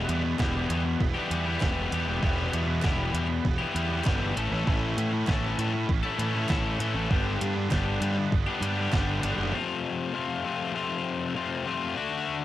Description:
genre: indie rock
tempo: 98 BPM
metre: 4/4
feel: straight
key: unclear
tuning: A4 = 442 Hz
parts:
  - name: cranked stack guitar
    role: riff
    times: 0.0-12.4 s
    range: E2 to A4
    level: -29 LUFS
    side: left 5 dB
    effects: overdrive, cassette tape
  - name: scooped high-gain guitar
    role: riff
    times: 0.0-9.5 s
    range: G2 to E4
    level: -34 LUFS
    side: right 8 dB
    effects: distortion, analog chorus, cassette tape
  - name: fuzz fingered electric bass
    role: bass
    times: 0.0-9.5 s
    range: E1 to A2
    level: -29 LUFS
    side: right 1 dB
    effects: overdrive
  - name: detuned 8-bit digital drum machine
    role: drums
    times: 0.1-9.4 s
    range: hi-hat, kick drum, snare drum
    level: -28 LUFS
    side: right 1 dB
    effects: overdrive, cassette tape
  - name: group handclap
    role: percussion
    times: 0.4-9.1 s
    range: none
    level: -43 LUFS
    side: right 8 dB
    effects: none
room: little or no reverb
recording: home recording on cassette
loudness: -25 LUFS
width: side -13 dB against mid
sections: 0.0-9.5 A section; 9.5-12.4 B section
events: none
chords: 0.0 Em; 4.4 A; 7.1 G; 9.5 F

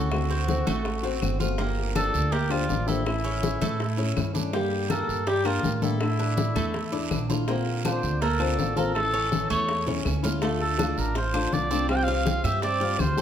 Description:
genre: latin, Cuban son and guajira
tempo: 163 BPM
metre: 4/4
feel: straight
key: D minor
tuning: A4 = 440 Hz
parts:
  - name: trumpet with cup mute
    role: melody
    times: 0.0-13.2 s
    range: E4 to G5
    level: -29 LUFS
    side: equal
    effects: none
  - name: flamenco guitar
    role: accompaniment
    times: 0.0-13.2 s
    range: C3 to G4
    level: -30 LUFS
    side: left 5 dB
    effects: none
  - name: Cuban tres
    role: arpeggios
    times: 0.0-13.2 s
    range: G3 to A4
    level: -31 LUFS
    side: right 3 dB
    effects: none
  - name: upright bass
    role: bass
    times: 0.0-13.2 s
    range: G1 to A2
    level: -28 LUFS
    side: right 2 dB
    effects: none
  - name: bongos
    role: percussion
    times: 0.1-13.2 s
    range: none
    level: -36 LUFS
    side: left 4 dB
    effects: none
  - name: claves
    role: percussion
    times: 0.1-13.2 s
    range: none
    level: -43 LUFS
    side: left 4 dB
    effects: none
  - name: congas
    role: percussion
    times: 0.1-13.2 s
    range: none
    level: -32 LUFS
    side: left 4 dB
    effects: none
  - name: guiro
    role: percussion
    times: 0.1-13.2 s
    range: none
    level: -39 LUFS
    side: right 8 dB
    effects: none
room: moderate large studio reverb, RT60 1.1 s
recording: none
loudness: -23 LUFS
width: side -9 dB against mid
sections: 0.0-10.4 A section; 10.4-13.2 B section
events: drum fill 9.3-10.4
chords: 0.1 D7; 1.6 Gm7; 3.1 A; 4.5 Gm; 6.0 Asus4; 7.5 Bbadd9; 9.0 A; 10.4 Dm; 11.9 Csus4

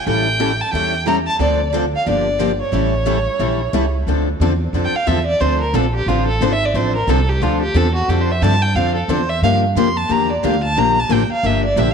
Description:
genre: acoustic string swing (jazz manouche)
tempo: 179 BPM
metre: 4/4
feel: swing 59% on 8ths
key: D minor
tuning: A4 = 440 Hz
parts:
  - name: warm violin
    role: melody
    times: 0.0-11.9 s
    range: F4 to C6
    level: -19 LUFS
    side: right 1 dB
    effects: slapback echo
  - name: picked steel-string acoustic guitar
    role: accompaniment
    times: 0.1-11.9 s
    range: D3 to A4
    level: -21 LUFS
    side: left 10 dB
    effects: none
  - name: picked steel-string acoustic guitar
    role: accompaniment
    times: 0.1-11.9 s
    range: D3 to A4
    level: -24 LUFS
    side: right 12 dB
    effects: none
  - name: upright bass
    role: bass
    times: 0.1-11.9 s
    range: G1 to G2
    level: -20 LUFS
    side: right 1 dB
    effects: none
room: moderate echo chamber reverb, RT60 2.3 s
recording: 1960s-style stereo with parts hard left and right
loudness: -15 LUFS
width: side -6 dB against mid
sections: 0.0-4.1 A section; 4.1-11.9 B section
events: violin solo 4.1-11.9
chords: 0.1 A7; 1.4 Dm7; 2.1 Gm7; 2.7 A7; 4.1 Dm9; 9.4 Gm7

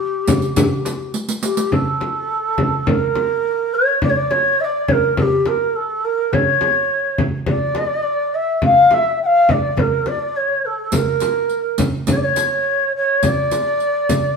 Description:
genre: Arabic maqam ensemble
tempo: 104 BPM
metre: 4/4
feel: straight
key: G maqam nikriz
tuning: A4 = 437 Hz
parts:
  - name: low ney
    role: melody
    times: 0.0-14.4 s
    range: G4 to G5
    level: -16 LUFS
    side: equal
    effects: none
  - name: darbuka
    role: percussion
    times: 0.0-14.2 s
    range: none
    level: -24 LUFS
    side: right 3 dB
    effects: none
  - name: frame drum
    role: percussion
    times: 0.3-14.2 s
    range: none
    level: -21 LUFS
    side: left 2 dB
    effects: none
  - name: riq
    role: percussion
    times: 0.3-1.7, 10.9-14.2 s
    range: none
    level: -25 LUFS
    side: right 2 dB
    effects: none
room: wet stone room reverb, RT60 1.0 s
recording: band playing live in one room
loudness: -15 LUFS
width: side -5 dB against mid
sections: 0.0-1.7 A section; 1.7-14.4 B section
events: drum fill 1.1-1.7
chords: none

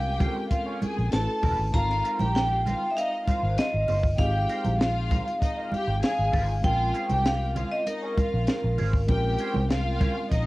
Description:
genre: lush 1970s-style soul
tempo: 98 BPM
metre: 4/4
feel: straight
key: Bb dorian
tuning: A4 = 438 Hz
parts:
  - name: vibraphone with hard mallets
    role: melody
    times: 0.0-10.5 s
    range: Bb4 to Bb5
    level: -28 LUFS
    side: equal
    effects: cassette tape, plate reverb
  - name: warm studio violin section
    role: second line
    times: 0.0-10.5 s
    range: Eb4 to A5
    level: -33 LUFS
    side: left 1 dB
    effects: plate reverb, tape echo
  - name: tine electric piano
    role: accompaniment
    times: 0.0-10.5 s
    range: Ab3 to B4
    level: -35 LUFS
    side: left 1 dB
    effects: medium tremolo, plate reverb
  - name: vintage muted fingered electric bass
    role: bass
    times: 0.0-10.5 s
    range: E1 to C2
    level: -27 LUFS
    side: equal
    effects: none
  - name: electric guitar through a small old amp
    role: riff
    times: 0.2-10.3 s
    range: Db4 to Eb5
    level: -39 LUFS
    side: right 2 dB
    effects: wah, lush chorus
  - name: compact cocktail drum kit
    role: drums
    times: 0.2-10.5 s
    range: hi-hat, kick drum, snare drum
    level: -27 LUFS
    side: equal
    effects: cassette tape
  - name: congas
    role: percussion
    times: 0.2-10.5 s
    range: none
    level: -34 LUFS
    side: right 3 dB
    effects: none
room: light reverb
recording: home recording on cassette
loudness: -23 LUFS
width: side -19 dB against mid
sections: 0.0-10.5 A section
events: none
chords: 0.0 Bbm9; 1.1 A69; 1.7 Ab69; 6.6 Bbm9

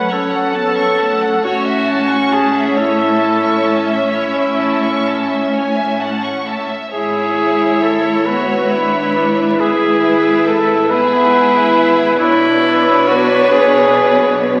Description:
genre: cinematic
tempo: 42-47 BPM (dotted quarters)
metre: 6/8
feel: rubato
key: unclear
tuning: A4 = 441 Hz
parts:
  - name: mellow cor anglais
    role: melody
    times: 0.0-14.6 s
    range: E4 to B4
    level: -20 LUFS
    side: equal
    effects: none
  - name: warm symphonic violin section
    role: melody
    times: 0.0-14.6 s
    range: C#5 to G#5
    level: -27 LUFS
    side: equal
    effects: none
  - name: clear clarinet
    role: second line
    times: 0.0-14.6 s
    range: E4 to B4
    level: -21 LUFS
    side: equal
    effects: none
  - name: rich symphonic violin section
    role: second line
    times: 0.0-14.6 s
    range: G#4 to C#6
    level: -23 LUFS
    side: equal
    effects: none
  - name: rich symphonic viola section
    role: accompaniment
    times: 0.0-14.6 s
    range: C#4 to F#4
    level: -24 LUFS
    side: equal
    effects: none
  - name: mellow French horn section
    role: sustained chords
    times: 0.0-14.6 s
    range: A3 to C#5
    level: -20 LUFS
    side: equal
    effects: none
  - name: dark symphonic double bass section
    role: bass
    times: 0.0-14.6 s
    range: F#1 to B1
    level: -37 LUFS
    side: equal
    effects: none
  - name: warm symphonic cello section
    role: bass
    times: 0.0-14.6 s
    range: F#2 to B2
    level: -26 LUFS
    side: equal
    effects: none
room: wet scoring stage reverb, RT60 1.7 s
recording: very old 78 rpm record, vinyl crackle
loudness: -14 LUFS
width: mono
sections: 0.0-14.6 A section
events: none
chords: 0.0 F#m; 1.5 A; 6.9 E/G#; 12.2 Bmadd9

